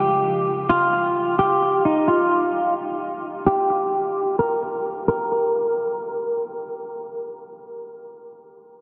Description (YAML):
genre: hip hop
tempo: free time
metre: none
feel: none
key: unclear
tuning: A4 = 440 Hz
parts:
  - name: clean electric guitar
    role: melody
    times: 0.0-6.4 s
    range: Eb4 to Bb4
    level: -22 LUFS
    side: equal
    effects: lush chorus, low-pass filter, delay
room: wet huge ambient reverb, RT60 8.3 s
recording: dreamy mix soaked in reverb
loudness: -22 LUFS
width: mono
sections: 0.0-5.1 A section; 5.1-8.8 B section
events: filter sweep on clean electric guitar 0.0-5.1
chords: none